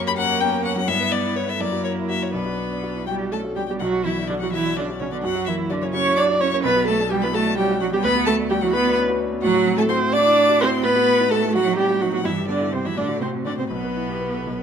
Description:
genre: quick classical-period movement for piano quartet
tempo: 85 BPM (dotted quarters)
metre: 6/8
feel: rubato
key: B minor, E minor from 9.4 s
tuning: A4 = 440 Hz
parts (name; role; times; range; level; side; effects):
- warm cello; second line; 0.0-14.6 s; B2 to D4; -25 LUFS; right 6 dB; none
- clear concert grand piano; accompaniment; 0.0-14.6 s; B1 to B4; -26 LUFS; left 1 dB; none
- dark viola; accompaniment; 0.0-14.6 s; B3 to D5; -22 LUFS; right 2 dB; none
- rich violin; melody; 0.1-14.6 s; B4 to D6; -26 LUFS; left 9 dB; none
room: moderate recital hall reverb, RT60 1.4 s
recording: close, detailed microphones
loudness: -18 LUFS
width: side -7 dB against mid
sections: 0.0-3.8 A section; 3.8-14.6 A section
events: none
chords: 0.0 F#; 0.9 Em/G; 1.6 F#7; 2.3 Bm; 5.2 F#7; 6.6 Bm; 8.0 Bm/D; 9.4 F#m7b5/A; 10.8 B7/A; 12.2 Em/G; 13.0 F#dim/A; 13.7 Em/B

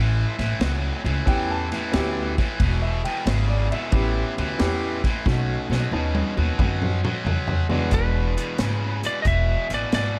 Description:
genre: electric blues shuffle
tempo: 90 BPM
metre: 4/4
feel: swing 67% on 8ths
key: unclear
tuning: A4 = 439 Hz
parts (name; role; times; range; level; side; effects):
- overdriven electric guitar; riff; 0.0-10.2 s; E2 to G#3; -31 LUFS; equal; spring reverb
- upright bass; bass; 0.0-10.2 s; E1 to F#2; -26 LUFS; equal; none
- vintage drum kit; drums; 0.4-10.1 s; hi-hat, kick drum, ride cymbal, snare drum, toms; -28 LUFS; equal; none
- warm concert grand piano; accompaniment; 1.3-8.5 s; E2 to A5; -30 LUFS; equal; none
- lightly driven lead guitar; melody; 7.9-10.2 s; B4 to E5; -29 LUFS; equal; slapback echo
room: light reverb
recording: none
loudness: -23 LUFS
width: mono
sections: 0.0-7.9 A section; 7.9-10.2 B section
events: drum fill 5.3-7.9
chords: 0.0 A9; 2.6 E; 3.9 A9; 5.3 B9; 7.9 E9

